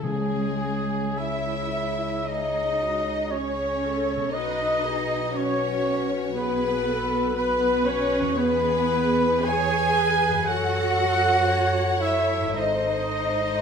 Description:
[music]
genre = classical, slow romantic movement for symphony orchestra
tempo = 50-60 BPM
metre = 4/4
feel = rubato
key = C# minor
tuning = A4 = 440 Hz
[part]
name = warm studio violin section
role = melody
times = 0.0-13.6 s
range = G#4 to G#5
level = -34 LUFS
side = left 5 dB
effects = none
[part]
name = clear studio violin section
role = second line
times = 0.0-13.6 s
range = G#4 to G#5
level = -33 LUFS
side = left 5 dB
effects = none
[part]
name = mellow hollow concert flute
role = second line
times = 0.0-13.6 s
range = G#4 to G#5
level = -30 LUFS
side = left 2 dB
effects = none
[part]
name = mellow oboe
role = second line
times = 0.0-13.6 s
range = G#4 to G#5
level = -31 LUFS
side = right 1 dB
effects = none
[part]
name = concert harp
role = arpeggios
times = 0.0-13.6 s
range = E2 to E5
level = -35 LUFS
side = left 5 dB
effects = none
[part]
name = mellow trumpet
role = stabs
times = 0.0-13.6 s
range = G#4 to G#5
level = -29 LUFS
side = right 2 dB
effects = none
[part]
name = warm studio cello section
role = bass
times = 0.0-13.6 s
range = G#3 to G#4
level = -29 LUFS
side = right 4 dB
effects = none
[part]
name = warm studio double bass section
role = bass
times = 0.0-13.6 s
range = G#1 to F#2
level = -33 LUFS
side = right 3 dB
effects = none
[part]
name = timpani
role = percussion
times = 0.0-1.7 s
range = C#3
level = -35 LUFS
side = left 2 dB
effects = none
[part]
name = mellow French horn section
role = sustained chords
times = 0.1-13.6 s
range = F#4 to C#5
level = -31 LUFS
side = left 6 dB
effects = none
[part]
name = warm studio viola section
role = accompaniment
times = 2.3-13.6 s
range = F#4 to C#5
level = -32 LUFS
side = right 2 dB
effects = none
[sound]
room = wet recital hall reverb, RT60 1.4 s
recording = minimal, uncompressed stereo recording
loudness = -21 LUFS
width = side -6 dB against mid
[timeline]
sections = 0.0-13.6 A section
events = none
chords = 0.0 C#m; 4.3 B; 8.4 E; 10.5 F#m; 12.6 G#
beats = | 0.03 1.19 2.27 3.32 | 4.34 5.36 6.37 7.37 | 8.38 9.46 10.47 11.49 | 12.56

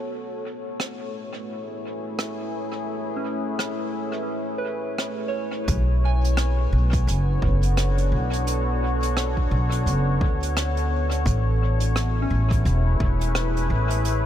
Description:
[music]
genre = ambient dub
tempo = 86 BPM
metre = 4/4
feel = swing 59% on 16ths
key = B dorian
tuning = A4 = 436 Hz
[part]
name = deep dark ambient pad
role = sustained chords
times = 0.0-14.3 s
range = A3 to C#5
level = -28 LUFS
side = left 1 dB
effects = chorus, built-in reverb
[part]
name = soft synth bell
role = arpeggios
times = 0.0-14.3 s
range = C#4 to G#5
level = -35 LUFS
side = right 1 dB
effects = chorus, phaser, low-pass filter, dub echo
[part]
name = jazz brush drum kit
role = drums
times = 0.8-14.2 s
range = hi-hat, rim click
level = -31 LUFS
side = right 2 dB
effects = dub echo
[part]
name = upright bass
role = bass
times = 5.7-14.3 s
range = E1 to D2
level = -21 LUFS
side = equal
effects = none
[part]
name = electronic kick drum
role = drums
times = 5.7-13.2 s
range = none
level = -25 LUFS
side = equal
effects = overdrive
[sound]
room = little or no reverb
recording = none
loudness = -21 LUFS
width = side -11 dB against mid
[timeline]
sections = 0.0-5.7 A section; 5.7-14.3 B section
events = filter sweep on synth bell 0.0-5.7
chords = 0.1 Amaj7; 5.7 Bm7; 11.3 Amaj7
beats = | 0.10 0.80 1.49 2.19 | 2.89 3.59 4.28 4.98 | 5.68 6.38 7.07 7.77 | 8.47 9.17 9.87 10.56 | 11.26 11.96 12.66 13.35 | 14.05

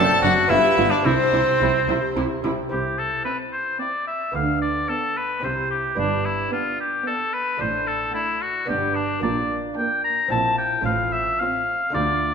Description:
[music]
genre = classical, baroque-style concerto movement with solo episodes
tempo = 110 BPM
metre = 3/4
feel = straight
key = C major, F major from 9.2 s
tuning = A4 = 441 Hz
[part]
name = clear oboe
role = melody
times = 0.0-12.3 s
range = C4 to Bb5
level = -22 LUFS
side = left 2 dB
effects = none
[part]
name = rich chamber violin section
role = melody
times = 0.0-12.3 s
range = C5 to A5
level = -25 LUFS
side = left 2 dB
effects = none
[part]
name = warm chamber violin section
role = second line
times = 0.0-12.3 s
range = D4 to A5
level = -29 LUFS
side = right 3 dB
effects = none
[part]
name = dark chamber viola section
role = accompaniment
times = 0.0-12.3 s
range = A3 to F4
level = -30 LUFS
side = right 2 dB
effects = none
[part]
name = lute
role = accompaniment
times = 0.0-12.3 s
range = D2 to F4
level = -28 LUFS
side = equal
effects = none
[part]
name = rich chamber cello section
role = bass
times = 0.0-12.3 s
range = D2 to D3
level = -29 LUFS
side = right 3 dB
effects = none
[part]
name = warm chamber double bass section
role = bass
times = 0.0-12.3 s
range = F#1 to D2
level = -31 LUFS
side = right 4 dB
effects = none
[sound]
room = wet concert hall reverb, RT60 2.0 s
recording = minimal, uncompressed stereo recording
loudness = -20 LUFS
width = side -6 dB against mid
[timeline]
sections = 0.0-2.7 A section; 2.7-12.3 B section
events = none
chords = 0.0 D7/F#; 0.5 G7; 1.1 C; 4.4 G/D; 5.4 C; 6.0 G; 7.6 D/A; 8.7 G; 9.2 Gm/Bb; 10.3 C7/Bb; 10.9 F/A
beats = 0.50 | 1.05 1.61 2.17 | 2.72 3.26 3.81 | 4.35 4.90 5.44 | 5.98 6.53 7.07 | 7.61 8.15 8.69 | 9.23 9.77 10.31 | 10.86 11.40 11.95

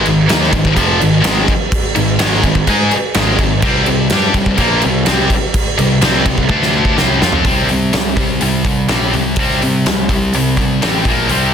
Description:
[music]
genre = hard rock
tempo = 126 BPM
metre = 4/4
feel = straight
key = C minor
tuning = A4 = 440 Hz
[part]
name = heavy high-gain guitar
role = riff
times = 0.0-11.5 s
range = F2 to Ab4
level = -14 LUFS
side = left 1 dB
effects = distortion
[part]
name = fuzz picked electric bass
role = bass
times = 0.0-11.5 s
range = F1 to C3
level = -18 LUFS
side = equal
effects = overdrive
[part]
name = huge arena drum kit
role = drums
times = 0.1-11.4 s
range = crash cymbal, hi-hat, kick drum, snare drum, toms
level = -16 LUFS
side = right 1 dB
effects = none
[sound]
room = small room ambience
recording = dense, heavily limited modern master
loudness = -11 LUFS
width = side -8 dB against mid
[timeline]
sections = 0.0-7.5 A section; 7.5-11.5 B section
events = drum fill 6.5-7.5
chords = 0.0 Ab5; 3.6 C5; 6.5 D5; 7.0 C5; 11.1 Bb5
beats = 0.29 0.77 1.25 | 1.73 2.20 2.68 3.16 | 3.64 4.11 4.59 5.07 | 5.55 6.03 6.50 6.98 | 7.46 7.94 8.42 8.90 | 9.38 9.86 10.34 10.82 | 11.30

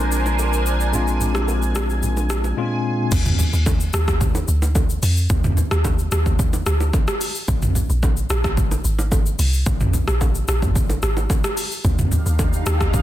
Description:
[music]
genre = amapiano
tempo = 110 BPM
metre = 4/4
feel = straight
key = unclear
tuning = A4 = 442 Hz
[part]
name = tine electric piano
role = accompaniment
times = 0.0-3.2 s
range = Bb2 to F4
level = -25 LUFS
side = left 3 dB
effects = medium stereo tremolo, low-pass filter
[part]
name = lush unison pad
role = sustained chords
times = 0.0-3.1, 12.1-13.0 s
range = D4 to Ab5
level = -26 LUFS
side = right 1 dB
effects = chorus, phaser, low-pass filter
[part]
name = saturated sub bass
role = bass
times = 0.0-2.5 s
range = Bb1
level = -21 LUFS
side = equal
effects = none
[part]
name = deep house drum kit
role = drums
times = 0.1-13.0 s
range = crash cymbal, hi-hat, kick drum, rim click, shaker, toms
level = -20 LUFS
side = equal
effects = overdrive
[part]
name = bongos and congas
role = percussion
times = 0.3-13.0 s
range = none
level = -29 LUFS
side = right 2 dB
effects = none
[part]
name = deep log drum bass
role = bass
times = 3.1-13.0 s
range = Ab1 to F2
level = -20 LUFS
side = equal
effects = none
[sound]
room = little or no reverb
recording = dense, heavily limited modern master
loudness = -17 LUFS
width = side -13 dB against mid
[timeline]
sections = 0.0-3.1 A section; 3.1-13.0 B section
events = filter sweep 0.0-3.1; drop 3.1-13.0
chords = 0.0 Bb9; 3.1 N.C.; 11.8 Ebmaj9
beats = 0.39 | 0.94 1.48 2.03 2.57 | 3.12 3.66 4.21 4.75 | 5.30 5.84 6.39 6.94 | 7.48 8.03 8.57 9.12 | 9.66 10.21 10.75 11.30 | 11.85 12.39 12.94

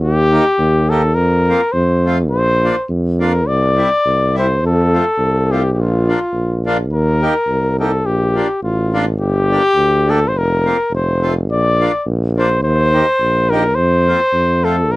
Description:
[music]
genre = alpine folk, alpine dance band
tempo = 105 BPM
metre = 2/4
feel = swing 54% on 8ths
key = Bb major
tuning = A4 = 440 Hz
[part]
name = warm trumpet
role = melody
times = 0.0-15.0 s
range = F4 to D5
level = -15 LUFS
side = left 1 dB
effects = none
[part]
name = clear tuba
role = bass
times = 0.0-15.0 s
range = F1 to F2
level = -16 LUFS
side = right 1 dB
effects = none
[part]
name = accordion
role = accompaniment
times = 0.3-14.8 s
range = G3 to G4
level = -19 LUFS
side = equal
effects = none
[sound]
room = little or no reverb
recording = dry, close 1970s-style studio recording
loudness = -13 LUFS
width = side -19 dB against mid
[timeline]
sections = 0.0-15.0 A section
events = none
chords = 0.0 Eb; 1.2 Fsus4; 1.7 F; 2.3 Bbadd9; 3.5 C; 4.6 F; 5.8 Bb; 6.9 Eb; 8.1 Bb; 9.2 Gm; 10.3 Fsus4; 10.9 F; 11.5 Bb; 12.6 Eb; 13.8 Fsus4; 14.3 F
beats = | 0.03 0.60 | 1.17 1.75 | 2.33 2.90 | 3.48 4.05 | 4.62 5.19 | 5.76 6.33 | 6.91 7.48 | 8.05 8.62 | 9.19 9.76 | 10.34 10.91 | 11.49 12.06 | 12.63 13.21 | 13.78 14.35 | 14.91

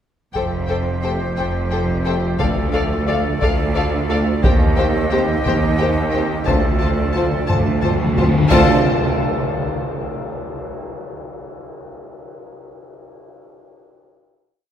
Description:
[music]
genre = cinematic, epic orchestral film score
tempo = 59 BPM (dotted quarters)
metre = 6/8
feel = straight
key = D phrygian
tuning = A4 = 442 Hz
[part]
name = clear symphonic violin section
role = melody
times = 0.3-8.9 s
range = F5 to A5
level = -29 LUFS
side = left 5 dB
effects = none
[part]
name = warm woodwind section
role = sustained chords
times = 0.3-8.8 s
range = A3 to Eb5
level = -26 LUFS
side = equal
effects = none
[part]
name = warm symphonic violin section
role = second line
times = 0.4-8.9 s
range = C5 to D5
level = -27 LUFS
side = left 3 dB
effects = none
[part]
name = clear symphonic viola section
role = accompaniment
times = 0.4-8.9 s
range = F4 to A4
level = -27 LUFS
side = equal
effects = none
[part]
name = bright symphonic cello section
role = bass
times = 0.4-8.9 s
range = D2 to F2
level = -23 LUFS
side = right 2 dB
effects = none
[part]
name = clear symphonic double bass section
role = bass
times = 0.4-8.9 s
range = F1 to Eb2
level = -24 LUFS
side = right 2 dB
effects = none
[part]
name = taiko ensemble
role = drums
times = 0.4-9.8 s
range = none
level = -22 LUFS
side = equal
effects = none
[part]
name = mellow French horn section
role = sustained chords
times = 1.0-8.8 s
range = A3 to G4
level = -29 LUFS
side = left 2 dB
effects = none
[part]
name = timpani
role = percussion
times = 2.4-3.4, 6.5-8.8 s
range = D3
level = -23 LUFS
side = left 1 dB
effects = none
[part]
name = cymbal swell and tam-tam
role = percussion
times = 4.4-11.2 s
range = none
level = -27 LUFS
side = left 1 dB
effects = none
[sound]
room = wet cathedral reverb, RT60 4.2 s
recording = recorded in a church or concert hall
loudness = -16 LUFS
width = side -9 dB against mid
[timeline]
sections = 0.4-8.5 theme; 8.5-10.5 final chord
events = timpani fill 6.5-8.5; drum fill 7.5-8.5; band accent 8.5-9.2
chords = 0.4 Fadd9; 2.4 Dm; 4.4 Cm/Eb; 6.5 Dm7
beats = | 0.35 1.38 | 2.40 3.42 | 4.44 5.46 | 6.48 7.50 | 8.51 9.53

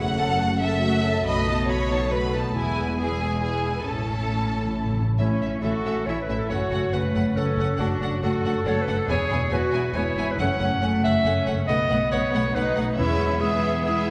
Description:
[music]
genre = cinematic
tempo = 139 BPM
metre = 3/4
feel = straight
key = A major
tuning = A4 = 441 Hz
[part]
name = warm symphonic violin section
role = melody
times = 0.0-14.1 s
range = E5 to B5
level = -36 LUFS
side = equal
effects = none
[part]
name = rich chamber violin section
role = second line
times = 0.0-14.1 s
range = B3 to F#5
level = -33 LUFS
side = equal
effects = none
[part]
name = warm symphonic viola section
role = accompaniment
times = 0.0-14.1 s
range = G#3 to A4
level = -33 LUFS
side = equal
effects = none
[part]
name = dark French horn section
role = sustained chords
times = 0.0-5.0 s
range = G#3 to C#4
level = -34 LUFS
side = equal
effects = none
[part]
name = concert harp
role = arpeggios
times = 0.0-14.1 s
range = E2 to G#4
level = -34 LUFS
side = equal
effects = none
[part]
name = rich symphonic cello section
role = bass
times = 0.0-14.1 s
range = E2 to A4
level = -31 LUFS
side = equal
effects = none
[part]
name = rich symphonic double bass section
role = bass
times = 0.0-14.1 s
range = E1 to E2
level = -32 LUFS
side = equal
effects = none
[part]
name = timpani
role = percussion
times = 3.9-5.8, 9.1-9.7, 13.0-13.6 s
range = E2 to A2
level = -32 LUFS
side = equal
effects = none
[part]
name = bright clarinet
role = second line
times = 5.2-14.1 s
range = E4 to F#5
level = -29 LUFS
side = equal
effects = none
[sound]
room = wet scoring stage reverb, RT60 1.7 s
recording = heard from further back in the room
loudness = -24 LUFS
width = mono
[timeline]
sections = 0.0-5.2 A section; 5.2-14.1 A section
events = timpani fill 3.9-5.2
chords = 0.0 F#m; 1.3 B7; 2.6 E; 3.9 A; 6.5 F#m; 7.8 D/F#; 9.1 E; 10.4 F#m; 11.7 B7; 13.0 E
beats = 0.40 0.83 | 1.26 1.70 2.13 | 2.56 2.99 3.43 | 3.87 4.32 4.76 | 5.20 5.64 6.07 | 6.50 6.94 7.37 | 7.80 8.23 8.67 | 9.10 9.53 9.96 | 10.40 10.83 11.26 | 11.69 12.12 12.55 | 12.98 13.41 13.85

